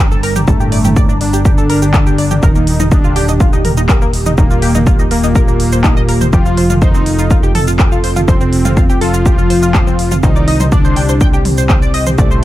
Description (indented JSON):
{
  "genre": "melodic techno",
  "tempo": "123 BPM",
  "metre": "4/4",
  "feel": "straight",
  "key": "unclear",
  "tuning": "A4 = 440 Hz",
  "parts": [
    { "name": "dark analog pad", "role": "sustained chords", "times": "0.1-12.4 s", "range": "G3 to Bb5", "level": "-23 LUFS", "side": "right 1 dB", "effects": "chorus, phaser, sidechain pumping" },
    { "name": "tight sequenced synth", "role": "arpeggios", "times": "0.0-12.4 s", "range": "Bb3 to G6", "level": "-20 LUFS", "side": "equal", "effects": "chorus, sidechain pumping, dub echo" },
    { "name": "tight sequencer bass", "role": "bass", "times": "0.0-12.4 s", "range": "Eb1 to C2", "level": "-16 LUFS", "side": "equal", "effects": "sidechain pumping" },
    { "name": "techno drum kit", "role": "drums", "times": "0.1-12.4 s", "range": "handclaps, hi-hat, shaker, toms", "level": "-20 LUFS", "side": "right 1 dB", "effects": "overdrive" },
    { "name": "fat analog lead", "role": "melody", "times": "0.5-12.4 s", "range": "A3 to F4", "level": "-19 LUFS", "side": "left 1 dB", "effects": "sidechain pumping, dub echo" },
    { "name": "big bright polysynth", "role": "second line", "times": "0.5-12.4 s", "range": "A2 to F3", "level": "-20 LUFS", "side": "equal", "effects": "chorus, sidechain pumping" },
    { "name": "electronic kick drum", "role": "drums", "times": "0.5-12.3 s", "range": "none", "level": "-12 LUFS", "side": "equal", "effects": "overdrive" }
  ],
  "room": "digital ambience",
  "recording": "none",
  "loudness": "-9 LUFS",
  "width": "side -14 dB against mid",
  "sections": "0.0-12.4 A section",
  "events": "none",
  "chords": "0.0 Gm; 2.4 Eb; 6.3 F; 10.2 Cm"
}